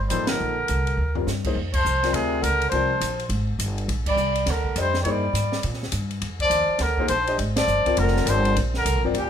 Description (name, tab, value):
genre	modal jazz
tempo	206 BPM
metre	4/4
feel	swing 62% on 8ths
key	F dorian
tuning	A4 = 443 Hz
part	upright bass	bass	0.0-9.3 s	F1 to Bb2	-25 LUFS	equal	none
part	warm trumpet	melody	0.1-9.3 s	G4 to D5	-24 LUFS	left 2 dB	none
part	clear bass clarinet	second line	0.1-9.3 s	Bb2 to G3	-30 LUFS	right 7 dB	none
part	warm concert grand piano	accompaniment	0.1-9.1 s	F3 to Eb5	-28 LUFS	left 6 dB	none
part	open jazz drum kit	drums	0.1-9.2 s	crash cymbal, hi-hat, kick drum, ride cymbal, snare drum, toms	-30 LUFS	equal	none
room	light reverb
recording	minimal, uncompressed stereo recording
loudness	-20 LUFS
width	side -9 dB against mid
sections	0.0-1.6 A section; 1.6-9.3 B section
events	band accent 0.3, 1.7, 4.0, 7.5; drum fill 1.0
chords	0.0 Gm; 1.6 Fm69; 3.9 Gm; 6.2 Fm69; 8.6 Gm